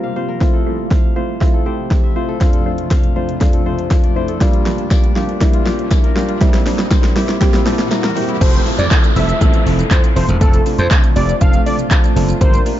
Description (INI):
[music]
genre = dance-pop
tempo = 120 BPM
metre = 4/4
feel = straight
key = F major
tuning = A4 = 437 Hz
[part]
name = soft electric-piano-like synth keys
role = accompaniment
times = 0.0-12.8 s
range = F2 to Bb5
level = -20 LUFS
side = right 1 dB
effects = chorus, sidechain pumping
[part]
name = granular cloud pad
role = sustained chords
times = 0.0-12.8 s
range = F2 to G4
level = -27 LUFS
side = equal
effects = built-in reverb, sidechain pumping
[part]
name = kora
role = arpeggios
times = 0.0-9.9 s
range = G3 to F5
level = -28 LUFS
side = left 7 dB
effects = sidechain pumping, ping-pong delay
[part]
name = deep house drum kit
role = drums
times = 0.4-12.8 s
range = crash cymbal, handclaps, hi-hat, kick drum, shaker, snare drum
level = -14 LUFS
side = equal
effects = overdrive
[part]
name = riser and downlifter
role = sound effects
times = 3.9-12.4 s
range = none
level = -27 LUFS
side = equal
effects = none
[part]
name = tambourine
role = percussion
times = 4.9-12.0 s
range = none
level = -34 LUFS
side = left 13 dB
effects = none
[part]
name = fat analog lead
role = melody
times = 8.4-12.6 s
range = A4 to F5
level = -22 LUFS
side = equal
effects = sidechain pumping, ping-pong delay
[part]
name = glassy slap bass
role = bass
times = 8.4-12.6 s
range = E1 to F2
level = -17 LUFS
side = equal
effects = sidechain pumping
[sound]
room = little or no reverb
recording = dark, warm production, nothing above 7.6 kHz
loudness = -12 LUFS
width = side -12 dB against mid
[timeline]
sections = 0.4-8.4 A section; 8.4-12.8 B section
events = break 0.0-0.4; build-up 0.4-8.4; drum fill 0.4-8.4; riser 3.9-8.4; synth keys fill 7.4-8.4; drop 8.4-12.8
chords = 0.4 Fmaj7; 2.4 Dm7/F; 4.4 Gm7; 8.4 Fmaj7; 10.4 Dm7/F